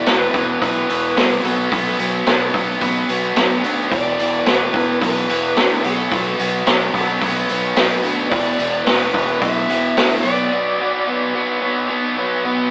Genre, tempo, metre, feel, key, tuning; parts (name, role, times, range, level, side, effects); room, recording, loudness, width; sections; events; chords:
blues rock power trio and southern rock; 109 BPM; 4/4; straight; A4 = 440 Hz
overdriven slide guitar; melody; 0.0-12.4 s; A4 to E5; -22 LUFS; equal
biting overdriven guitar; riff; 0.0-12.7 s; E2 to B3; -19 LUFS; equal
growling fingered electric bass; bass; 0.1-10.5 s; E1 to D2; -27 LUFS; equal; overdrive
vintage drum kit; drums; 0.1-10.4 s; hi-hat, kick drum, snare drum; -18 LUFS; equal
moderate stone room reverb, RT60 1.0 s; rough rehearsal-room recording, warm saturation, AM radio sound; -15 LUFS; side -30 dB against mid
0.0-12.7 A section
break 10.5-12.7
0.0 E5; 1.4 B5; 3.9 E5; 5.8 B5; 8.3 E5; 10.2 Bm